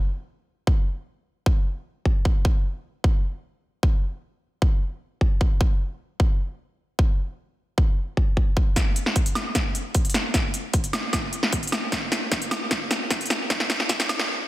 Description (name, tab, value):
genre	future bass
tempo	152 BPM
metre	4/4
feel	half-time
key	none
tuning	none
part	electronic kick drum	drums	0.7-14.0 s	none	-21 LUFS	equal	none
part	big-room dance drum kit	drums	8.8-14.3 s	hi-hat, snare drum, woodblock	-23 LUFS	equal	none
room	light reverb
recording	dense, heavily limited modern master, high-pass filter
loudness	-22 LUFS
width	side -16 dB against mid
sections	0.0-8.8 A section; 8.8-14.5 B section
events	build-up 8.8-14.5; drum fill 8.8-14.3; filter sweep 8.8-14.5; stop 14.3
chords	none